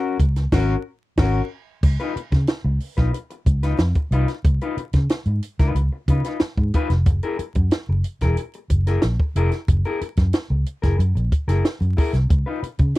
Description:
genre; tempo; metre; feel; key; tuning
funk; 92 BPM; 4/4; straight; Db mixolydian; A4 = 439 Hz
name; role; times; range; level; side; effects
mellow electric guitar; accompaniment; 0.0-13.0 s; Db4 to Cb5; -27 LUFS; left 5 dB; none
vintage muted fingered electric bass; bass; 0.2-12.9 s; Fb1 to Db3; -20 LUFS; equal; none
compact cocktail drum kit; drums; 0.2-13.0 s; crash cymbal, hi-hat, kick drum, snare drum; -20 LUFS; equal; none
room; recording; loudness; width
little or no reverb; dry, close 1970s-style studio recording, vinyl crackle; -18 LUFS; side -18 dB against mid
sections
0.0-1.8 A section; 1.8-13.0 B section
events
band accent 0.5-1.8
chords
0.0 Ab9sus4; 1.8 Db9; 7.1 Gb9; 12.3 Db9

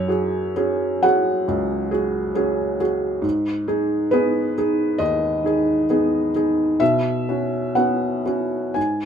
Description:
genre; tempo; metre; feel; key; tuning
neoclassical minimalist piano; 60-69 BPM; 4/4; rubato; G# minor; A4 = 440 Hz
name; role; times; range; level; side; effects
felt-muted upright piano; solo; 0.0-9.1 s; C#2 to G#5; -18 LUFS; equal; none
room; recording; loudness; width
light reverb; minimal, uncompressed stereo recording; -18 LUFS; side -7 dB against mid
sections
0.0-9.1 A section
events
none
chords
0.0 F#sus2; 3.2 G#m; 6.8 Bsus2

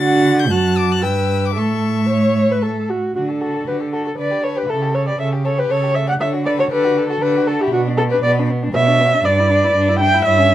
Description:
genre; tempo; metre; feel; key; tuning
quick classical-period movement for string quartet; 118 BPM; 3/4; straight; D major; A4 = 440 Hz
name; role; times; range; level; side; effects
rich violin; melody; 0.0-10.5 s; D4 to A6; -27 LUFS; left 10 dB; none
warm violin; second line; 0.0-10.5 s; B3 to A5; -26 LUFS; left 3 dB; none
warm viola; accompaniment; 0.0-10.5 s; F#4 to G5; -17 LUFS; equal; none
warm cello; bass; 0.0-10.5 s; F#2 to D3; -19 LUFS; right 2 dB; none
room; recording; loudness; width
light reverb; dark, warm production; -15 LUFS; side -12 dB against mid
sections
0.0-3.2 A section; 3.2-10.5 B section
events
none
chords
0.0 D; 1.0 G; 1.6 A; 3.2 D; 4.2 G/D; 4.7 A7/C#; 6.2 D; 7.7 Bm; 9.2 Em7/G

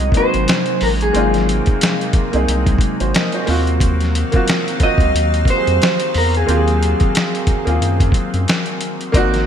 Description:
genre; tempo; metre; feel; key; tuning
R&B, neo-soul; 90 BPM; 4/4; swing 57% on 16ths; Eb dorian; A4 = 439 Hz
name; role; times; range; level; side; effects
electric guitar through a small old amp; melody; 0.0-7.6 s; Ab4 to Eb5; -19 LUFS; equal; wide subtle chorus, digital delay
warm upright piano; accompaniment; 0.0-9.5 s; Bb3 to Eb5; -21 LUFS; right 1 dB; lush chorus
soft additive organ-like pad; sustained chords; 0.0-9.5 s; C3 to F5; -24 LUFS; left 1 dB; ensemble chorus, built-in reverb
round analog bass; bass; 0.0-9.5 s; Ab1 to Gb2; -18 LUFS; equal; none
dusty soul sampler-style drum kit; drums; 0.0-9.5 s; hi-hat, kick drum, snare drum; -18 LUFS; equal; gated reverb
room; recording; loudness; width
light reverb; bright 1980s-style digital production; -14 LUFS; side -8 dB against mid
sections
0.0-9.5 A section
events
none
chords
0.0 Ab9; 3.5 Ebm69

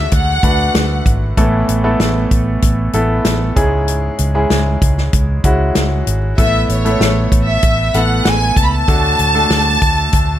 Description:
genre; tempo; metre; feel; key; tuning
piano-driven pop; 96 BPM; 4/4; straight; A major; A4 = 440 Hz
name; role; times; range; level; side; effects
rich studio violin section; melody; 0.0-1.0, 6.4-10.4 s; C#5 to B5; -16 LUFS; equal; none
clear concert grand piano; accompaniment; 0.0-10.4 s; G#2 to B4; -18 LUFS; equal; none
vintage muted fingered electric bass; bass; 0.0-10.4 s; G#1 to D2; -17 LUFS; equal; none
natural country drum kit; drums; 0.1-10.3 s; hi-hat, kick drum, snare drum; -16 LUFS; equal; none
room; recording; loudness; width
small room ambience; none; -12 LUFS; side -12 dB against mid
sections
0.0-10.4 A section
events
none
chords
0.0 D; 1.4 Asus2; 3.6 C#m; 6.4 Asus2; 8.9 D

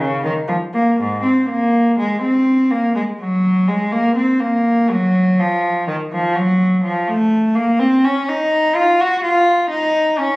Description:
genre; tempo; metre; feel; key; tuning
classical, baroque-style suite movement for unaccompanied cello; 62 BPM; 3/4; rubato; Bb minor; A4 = 440 Hz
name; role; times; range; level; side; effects
rich cello; solo; 0.0-10.4 s; Ab2 to Gb4; -14 LUFS; equal; none
room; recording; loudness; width
light reverb; recorded on a phone in the room, club reverb, compression; -14 LUFS; side -22 dB against mid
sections
0.0-10.4 A section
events
none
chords
none

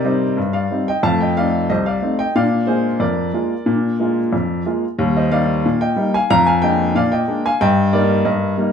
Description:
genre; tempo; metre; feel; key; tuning
ragtime piano; 91 BPM; 2/4; straight; Eb major; A4 = 440 Hz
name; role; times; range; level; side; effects
clear upright piano; solo; 0.0-8.7 s; C2 to Bb5; -15 LUFS; left 1 dB; none
room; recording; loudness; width
wet club reverb, RT60 0.6 s; heard from further back in the room; -15 LUFS; side -7 dB against mid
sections
0.0-8.7 A section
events
none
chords
0.0 Cm; 1.0 F7; 2.4 Bb7; 5.0 Eb; 6.3 Bb7/F; 7.6 Eb/G

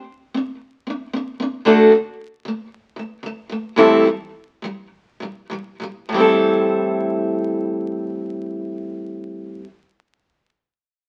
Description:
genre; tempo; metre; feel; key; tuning
pop; 97-114 BPM; 4/4; straight; A minor; A4 = 440 Hz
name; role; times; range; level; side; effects
picked steel-string acoustic guitar; solo; 0.0-9.7 s; A2 to A4; -19 LUFS; equal; none
room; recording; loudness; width
moderate studio reverb, RT60 0.7 s; very old 78 rpm record, vinyl crackle; -19 LUFS; mono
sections
0.0-6.1 A section; 6.1-11.1 B section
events
slowing down 1.6-6.1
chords
0.0 Csus2; 1.6 D5; 3.8 A7(no3); 6.1 Am7

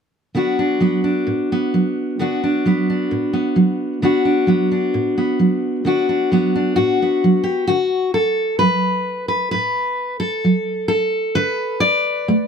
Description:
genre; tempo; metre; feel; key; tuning
folk, solo fingerstyle acoustic guitar; 66 BPM; 4/4; straight; D major; A4 = 441 Hz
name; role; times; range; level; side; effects
fingerpicked steel-string acoustic guitar; solo; 0.3-12.5 s; A2 to D5; -16 LUFS; equal; none
room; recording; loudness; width
little or no reverb; close, detailed microphones; -16 LUFS; side -7 dB against mid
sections
0.3-7.7 A section; 7.7-12.5 B section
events
none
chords
0.3 D6

